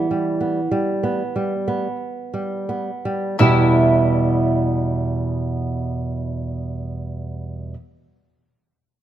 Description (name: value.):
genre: romantic duo for mandolin and classical guitar.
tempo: 42-50 BPM.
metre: 4/4.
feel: rubato.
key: E minor.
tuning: A4 = 438 Hz.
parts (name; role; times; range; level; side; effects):
mandolin; melody; 0.0-7.7 s; E4; -24 LUFS; left 1 dB; none.
nylon-string guitar; accompaniment; 0.0-7.8 s; E2 to G4; -19 LUFS; right 2 dB; none.
room: light reverb.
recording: none.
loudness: -19 LUFS.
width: side -11 dB against mid.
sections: 0.0-3.4 A section; 3.4-8.9 B section.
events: slowing down 0.0-3.4.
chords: 0.0 Em.